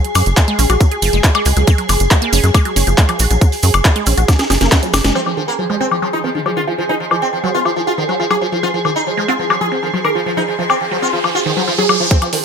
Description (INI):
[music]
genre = psychedelic trance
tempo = 138 BPM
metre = 4/4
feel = straight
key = F phrygian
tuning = A4 = 440 Hz
[part]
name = evolving wavetable pad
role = sustained chords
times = 0.0-12.4 s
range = Ab4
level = -21 LUFS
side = right 2 dB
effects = ensemble chorus, built-in reverb, sidechain pumping
[part]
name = drum and bass drum kit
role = drums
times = 0.0-12.4 s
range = handclaps, hi-hat, snare drum, woodblock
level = -17 LUFS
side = left 2 dB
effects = overdrive, low-pass filter on snare, low-pass filter on hats, low-pass filter on perc
[part]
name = wide unison pluck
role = riff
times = 0.2-12.4 s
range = Eb3 to Ab4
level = -21 LUFS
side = right 1 dB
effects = auto-pan, sidechain pumping, ping-pong delay
[part]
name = tight sequencer bass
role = bass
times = 0.2-5.1 s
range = Gb1 to Gb2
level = -14 LUFS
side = equal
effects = none
[part]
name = cabasa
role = percussion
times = 0.2-5.1 s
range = none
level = -24 LUFS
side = right 3 dB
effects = none
[part]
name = electronic kick drum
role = drums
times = 0.4-4.8, 12.1-12.2 s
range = none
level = -12 LUFS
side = equal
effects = overdrive
[part]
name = sitar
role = melody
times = 5.2-12.4 s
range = F3 to Bb4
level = -19 LUFS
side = equal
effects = phaser, sidechain pumping, dub echo
[part]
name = riser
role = sound effects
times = 10.0-12.1 s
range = none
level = -22 LUFS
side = right 2 dB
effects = none
[sound]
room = light reverb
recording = none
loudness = -12 LUFS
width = side -7 dB against mid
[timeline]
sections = 0.0-5.2 A section; 5.2-12.1 B section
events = drum fill 4.3-5.2; band accent 5.0; filter sweep on synth arpeggio sound 5.2-12.1; riser 10.0-12.1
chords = 0.0 Gb5; 5.2 F5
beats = 0.37 0.81 1.24 | 1.68 2.11 2.54 2.98 | 3.42 3.85 4.28 4.72 | 5.15 5.59 6.02 6.46 | 6.89 7.33 7.76 8.20 | 8.63 9.07 9.50 9.94 | 10.37 10.81 11.24 11.68 | 12.11